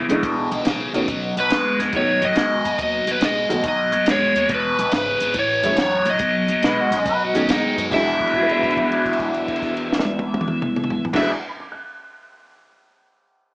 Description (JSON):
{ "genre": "electric blues shuffle", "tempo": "140 BPM", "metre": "4/4", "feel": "swing 67% on 8ths", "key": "E mixolydian", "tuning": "A4 = 440 Hz", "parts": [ { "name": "electric guitar through a small old amp", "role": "second line", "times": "0.0-0.4, 6.7-11.3 s", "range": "C#4 to B4", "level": "-26 LUFS", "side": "equal", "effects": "phaser" }, { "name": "biting overdriven guitar", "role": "riff", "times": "0.0-11.3 s", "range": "E2 to G#4", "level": "-22 LUFS", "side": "left 1 dB", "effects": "phaser" }, { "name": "upright bass", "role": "bass", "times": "0.0-11.3 s", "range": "E1 to F#2", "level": "-35 LUFS", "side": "equal", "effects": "none" }, { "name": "honky-tonk upright piano", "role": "accompaniment", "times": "0.1-11.7 s", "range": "E2 to F#6", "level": "-25 LUFS", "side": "right 1 dB", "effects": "none" }, { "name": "compact cocktail drum kit", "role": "drums", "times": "0.1-11.2 s", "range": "crash cymbal, hi-hat, kick drum, snare drum, toms", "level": "-25 LUFS", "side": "equal", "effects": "none" }, { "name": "overdriven slide guitar", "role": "melody", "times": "1.4-11.3 s", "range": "B4 to E5", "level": "-21 LUFS", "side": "equal", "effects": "none" } ], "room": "moderate small room reverb, RT60 0.6 s", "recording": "small speaker sound", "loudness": "-17 LUFS", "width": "side -24 dB against mid", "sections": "0.0-7.9 A section; 7.9-11.3 B section", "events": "held note 7.9-11.1", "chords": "0.0 E7; 1.1 B7; 4.5 E; 5.4 A7; 6.2 B7; 7.9 E7", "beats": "0.23 0.65 | 1.08 1.51 1.93 2.36 | 2.79 3.21 3.64 4.07 | 4.50 4.92 5.35 5.78 | 6.21 6.63 7.06 7.49 | 7.92 8.34 8.77 9.20 | 9.63 10.05 10.48 10.91" }